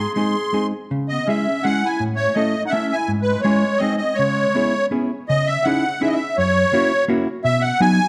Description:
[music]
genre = musette waltz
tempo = 166 BPM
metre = 3/4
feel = rubato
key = C# minor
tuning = A4 = 441 Hz
[part]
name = musette accordion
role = melody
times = 0.0-8.1 s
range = B4 to B#5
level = -22 LUFS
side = equal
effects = none
[part]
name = clear clarinet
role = second line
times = 0.0-4.9 s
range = G#3 to G#4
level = -29 LUFS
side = equal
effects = none
[part]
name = hollow-body jazz guitar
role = accompaniment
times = 0.0-8.0 s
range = F#2 to A4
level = -23 LUFS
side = equal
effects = none
[sound]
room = moderate recital hall reverb, RT60 1.9 s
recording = dark, warm production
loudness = -20 LUFS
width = mono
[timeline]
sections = 0.0-5.3 A section; 5.3-8.1 B section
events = none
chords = 0.0 G#; 0.9 C#m; 2.0 A; 3.1 C#m/G#; 3.8 G#; 4.2 C#m7; 5.3 C#madd9; 6.4 F#7; 7.4 B

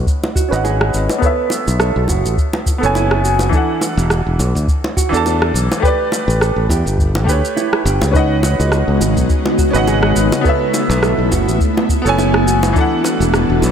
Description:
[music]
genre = sunset chillout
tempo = 104 BPM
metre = 4/4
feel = swing 56% on 16ths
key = unclear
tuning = A4 = 441 Hz
[part]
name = bright grand piano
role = accompaniment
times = 0.0-13.7 s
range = E3 to A5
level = -20 LUFS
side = moving between left 5 dB and right 4 dB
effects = auto-pan, low-pass filter, ping-pong delay
[part]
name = modern bright fingered electric bass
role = bass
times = 0.0-13.7 s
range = E1 to E2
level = -16 LUFS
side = equal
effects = none
[part]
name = electronic kick drum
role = drums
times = 0.1-12.9 s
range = none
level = -17 LUFS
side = equal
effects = small room ambience
[part]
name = electronic shaker and rim click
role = drums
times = 0.1-13.7 s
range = none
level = -23 LUFS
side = right 1 dB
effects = overdrive, small room ambience
[part]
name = bongos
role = percussion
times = 0.2-13.7 s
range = none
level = -24 LUFS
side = right 1 dB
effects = none
[part]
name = mellow electric guitar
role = arpeggios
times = 0.4-13.0 s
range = D#4 to B4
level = -22 LUFS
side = right 5 dB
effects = ping-pong delay
[part]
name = ethereal airy pad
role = sustained chords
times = 8.6-13.7 s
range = C#3 to A4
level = -19 LUFS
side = left 1 dB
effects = ensemble chorus, built-in reverb
[sound]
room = light reverb, digital ambience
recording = none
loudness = -13 LUFS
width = side -8 dB against mid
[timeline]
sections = 0.0-13.7 A section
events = filter sweep on grand piano 0.0-13.7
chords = 0.0 C#9sus4; 1.2 B9sus4; 3.5 E9sus4; 5.8 A9sus4; 8.1 C#9sus4; 10.5 B9sus4; 12.8 E9sus4

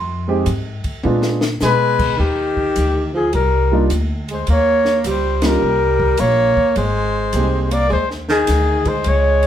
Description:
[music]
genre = jazz, small-group swing and bop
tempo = 105 BPM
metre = 4/4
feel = swing 67% on 8ths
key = Eb major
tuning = A4 = 441 Hz
[part]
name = dark grand piano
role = accompaniment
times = 0.0-7.7 s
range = G3 to C6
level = -20 LUFS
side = right 2 dB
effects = none
[part]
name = upright bass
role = bass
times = 0.0-9.5 s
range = Ab1 to Cb3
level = -20 LUFS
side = equal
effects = none
[part]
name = compact cocktail drum kit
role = drums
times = 0.5-9.5 s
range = crash cymbal, hi-hat, kick drum, ride cymbal, snare drum, toms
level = -27 LUFS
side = left 1 dB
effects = none
[part]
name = warm flugelhorn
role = melody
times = 1.6-9.5 s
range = G4 to D5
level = -17 LUFS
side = left 2 dB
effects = none
[part]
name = warm tenor saxophone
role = second line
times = 1.6-9.5 s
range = Eb3 to Bb3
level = -21 LUFS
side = right 2 dB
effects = none
[sound]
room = wet small room reverb, RT60 0.6 s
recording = heard from further back in the room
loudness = -14 LUFS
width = side -10 dB against mid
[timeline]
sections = 0.0-2.2 A section; 2.2-9.5 B section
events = drum fill 1.0-1.6; band accent 5.3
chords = 0.0 Fm7; 1.0 Bb7b9; 2.2 Ebmaj7; 4.5 Eb7; 6.8 Abmaj7

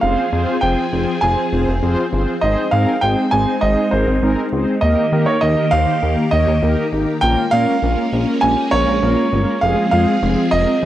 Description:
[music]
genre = pop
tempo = 100 BPM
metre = 4/4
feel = straight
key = unclear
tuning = A4 = 440 Hz
[part]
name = warm grand piano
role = melody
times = 0.0-10.9 s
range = C5 to Ab5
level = -18 LUFS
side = right 2 dB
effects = none
[part]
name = mellow synth brass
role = accompaniment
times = 0.0-10.9 s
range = Ab3 to Db5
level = -20 LUFS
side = left 1 dB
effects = chorus
[part]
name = phased string machine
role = sustained chords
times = 0.0-10.9 s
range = Eb3 to Ab4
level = -23 LUFS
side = equal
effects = ensemble chorus, phaser
[part]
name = chorused synth bass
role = bass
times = 0.0-10.9 s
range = F1 to Eb3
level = -19 LUFS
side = equal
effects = none
[sound]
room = digital ambience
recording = dry, gritty hardware recording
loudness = -14 LUFS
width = side -13 dB against mid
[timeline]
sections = 0.0-10.9 A section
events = none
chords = 0.0 Fm; 2.4 Ab; 4.8 Eb; 7.2 Bbm7; 9.6 Fm

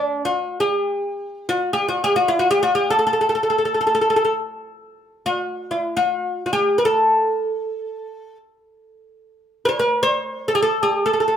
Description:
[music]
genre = Arabic maqam ensemble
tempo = free time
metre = none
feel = none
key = A maqam huzam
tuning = A4 = 441 Hz
[part]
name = oud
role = solo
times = 0.0-11.3 s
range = D4-40c to C5+50c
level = -18 LUFS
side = equal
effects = none
[sound]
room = wet studio reverb, RT60 0.6 s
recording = heard from further back in the room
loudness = -18 LUFS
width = side -9 dB against mid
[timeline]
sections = 0.0-11.4 A section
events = none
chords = none

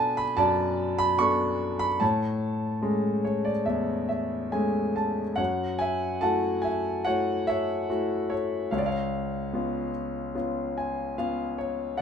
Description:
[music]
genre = classical, lyrical solo piano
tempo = 73 BPM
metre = 4/4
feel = rubato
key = A major, F# minor from 5.4 s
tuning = A4 = 437 Hz
[part]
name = warm concert grand piano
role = solo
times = 0.0-12.0 s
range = C#2 to C#6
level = -25 LUFS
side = equal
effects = none
[sound]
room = light reverb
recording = minimal, uncompressed stereo recording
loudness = -25 LUFS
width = side -7 dB against mid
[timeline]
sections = 0.0-5.4 A section; 5.4-12.0 B section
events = grand piano fill 2.8-5.4, 10.4-12.0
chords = 0.0 Bm7; 2.0 Amaj7; 5.4 F#m7; 8.7 C#7

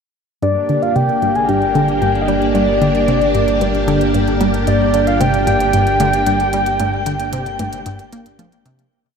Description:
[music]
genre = ambient, sequencer-driven space music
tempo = 113 BPM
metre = 4/4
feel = straight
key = G minor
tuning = A4 = 439 Hz
[part]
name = soft octave-layered synth lead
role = melody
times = 0.4-8.4 s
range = D5 to Ab5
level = -17 LUFS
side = equal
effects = chorus, shimmer reverb, ping-pong delay
[part]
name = string machine, full ensemble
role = sustained chords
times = 0.4-8.9 s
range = Bb3 to G4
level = -19 LUFS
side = equal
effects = ensemble chorus, shimmer reverb
[part]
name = tight sequenced synth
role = riff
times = 0.4-8.9 s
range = G2 to Bb3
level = -20 LUFS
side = equal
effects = chorus, ping-pong delay
[part]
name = analog drone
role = bass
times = 1.5-8.9 s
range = G1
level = -23 LUFS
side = equal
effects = chorus
[part]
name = minimal click drum kit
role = percussion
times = 0.4-8.9 s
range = hi-hat, toms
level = -30 LUFS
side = left 2 dB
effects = ping-pong delay
[sound]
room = wet huge ambient reverb, RT60 8.3 s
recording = none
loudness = -13 LUFS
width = side -6 dB against mid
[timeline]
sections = 0.4-8.9 A section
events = fade-in on drum 0.4-8.9; fade-out 6.1-8.9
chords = 0.4 Gm

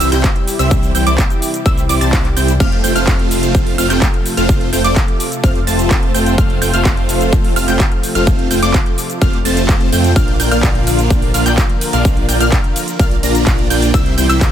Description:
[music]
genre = EDM, festival progressive house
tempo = 127 BPM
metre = 4/4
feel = straight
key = F major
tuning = A4 = 440 Hz
[part]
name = lush unison pad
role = sustained chords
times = 0.0-14.5 s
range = C3 to Bb4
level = -22 LUFS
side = equal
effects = chorus, sidechain pumping
[part]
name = wide unison pluck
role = arpeggios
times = 0.0-14.5 s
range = D6 to Bb6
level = -22 LUFS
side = moving between left 2 dB and right 4 dB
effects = auto-pan, sidechain pumping, ping-pong delay
[part]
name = supersaw chords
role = riff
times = 0.0-14.5 s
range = G3 to Bb5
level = -18 LUFS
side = right 1 dB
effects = phaser, sidechain pumping, ping-pong delay
[part]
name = wide detuned saw bass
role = bass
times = 0.0-14.5 s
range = F1 to F2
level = -18 LUFS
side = equal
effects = chorus, sidechain pumping
[part]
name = big-room dance drum kit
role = drums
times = 0.0-14.5 s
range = crash cymbal, handclaps, hi-hat, ride cymbal, shaker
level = -22 LUFS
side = right 1 dB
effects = none
[part]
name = electronic kick drum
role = drums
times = 0.2-14.5 s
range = none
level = -14 LUFS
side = equal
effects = overdrive
[sound]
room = little or no reverb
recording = none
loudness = -11 LUFS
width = side -10 dB against mid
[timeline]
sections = 0.0-14.5 A section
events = none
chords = 0.0 C; 2.6 F; 10.2 Bb; 13.9 C

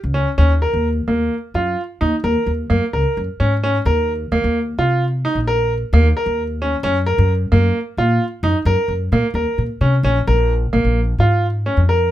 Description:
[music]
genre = contemporary instrumental, chamber music in an uneven meter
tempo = 131 BPM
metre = 7/4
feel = straight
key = unclear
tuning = A4 = 440 Hz
[part]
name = upright bass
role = bass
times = 0.0-12.1 s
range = Bb1 to C3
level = -17 LUFS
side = equal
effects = none
[part]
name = bright baby grand piano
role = arpeggios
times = 0.1-12.1 s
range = Bb3 to Bb4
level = -19 LUFS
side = right 1 dB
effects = none
[sound]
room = light reverb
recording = close, detailed microphones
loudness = -15 LUFS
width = side -13 dB against mid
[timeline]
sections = 0.4-12.1 A section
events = none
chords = 0.4 Eb5; 6.8 Gb; 10.0 Bb5

